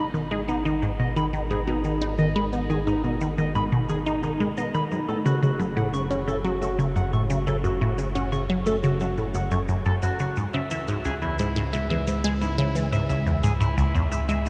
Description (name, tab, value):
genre	ambient, sequencer-driven space music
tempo	88 BPM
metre	4/4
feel	straight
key	F# dorian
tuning	A4 = 438 Hz
part	clean electric guitar	arpeggios	0.0-14.4 s	D#4 to C#6	-32 LUFS	equal	analog delay, shimmer reverb
part	resonant blip pluck	riff	0.0-14.5 s	C#2 to D#4	-27 LUFS	equal	phaser, analog delay, shimmer reverb
part	fat analog bass	bass	0.0-14.5 s	G#1 to C#2	-33 LUFS	equal	none
part	shaker and percussion blips	percussion	0.1-14.5 s	none	-48 LUFS	equal	analog delay
room	wet huge ambient reverb, RT60 6.9 s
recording	dark, warm production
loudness	-25 LUFS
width	mono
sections	0.0-14.5 A section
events	fade-in on drum 0.0-14.5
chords	0.0 G#m; 4.9 F#m; 10.4 C#m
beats	0.14 0.82 1.50 | 2.19 2.87 3.55 4.23 | 4.91 5.59 6.28 6.96 | 7.64 8.32 9.00 9.69 | 10.37 11.05 11.73 12.41 | 13.10 13.78 14.46